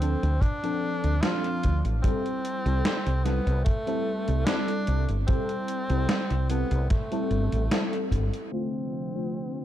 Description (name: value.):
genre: vaporwave.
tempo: 74 BPM.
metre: 4/4.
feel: straight.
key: unclear.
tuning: A4 = 441 Hz.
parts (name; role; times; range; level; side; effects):
bright tenor saxophone; melody; 0.0-9.6 s; A3 to F4; -32 LUFS; equal; vintage 12-bit sampler grit, tape echo.
FM electric piano with soft pad layer; accompaniment; 0.0-9.6 s; D3 to A4; -30 LUFS; left 1 dB; analog chorus.
woody fretless electric bass; bass; 0.0-8.3 s; G1 to D2; -25 LUFS; equal; none.
gated 80s digital drum machine; drums; 0.0-9.6 s; hi-hat, snare drum; -30 LUFS; right 1 dB; gated reverb, gated reverb snare, low-pass filter on hats, low-pass filter on snare, low-pass filter on room.
kick drum; drums; 0.4-8.3 s; none; -25 LUFS; equal; none.
warbly tape-like pad; sustained chords; 8.7-9.6 s; C3 to D4; -37 LUFS; right 2 dB; chorus, built-in reverb, vintage 12-bit sampler grit.
room: small room reverb.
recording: dark, warm production, low-pass filter.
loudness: -24 LUFS.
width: side -12 dB against mid.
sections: 0.0-8.5 A section; 8.5-9.6 B section.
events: band accent 7.7-8.1; filter sweep 8.5-9.6.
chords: 0.0 Dm7; 2.0 C6; 8.5 Dm7.